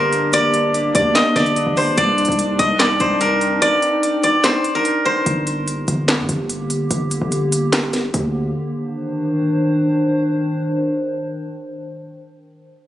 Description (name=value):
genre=hip hop, trap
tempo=146 BPM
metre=4/4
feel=half-time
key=G minor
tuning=A4 = 444 Hz
part: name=steel-string zither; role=melody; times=0.0-7.0 s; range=Bb4 to Eb5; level=-16 LUFS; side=equal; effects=digital delay
part: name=warbly tape-like pad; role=sustained chords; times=0.0-11.8 s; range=D3 to C5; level=-21 LUFS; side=equal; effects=chorus, built-in reverb
part: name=hard-hitting 808-style bass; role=bass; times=0.0-8.5 s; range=G1 to G2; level=-23 LUFS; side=equal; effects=none
part: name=trap drum kit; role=drums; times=0.1-8.2 s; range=handclaps, hi-hat, snare drum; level=-21 LUFS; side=equal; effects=overdrive
room=light reverb, digital ambience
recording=recorded on a phone in the room, club reverb, nothing above 11.0 kHz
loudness=-16 LUFS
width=side -12 dB against mid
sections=0.0-5.3 A section; 5.3-11.8 B section; 11.8-12.9 C section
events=kick muted 3.6-5.3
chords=0.0 Gm; 2.0 Cmadd9; 5.3 Gm; 8.6 Cmadd9; 11.8 N.C.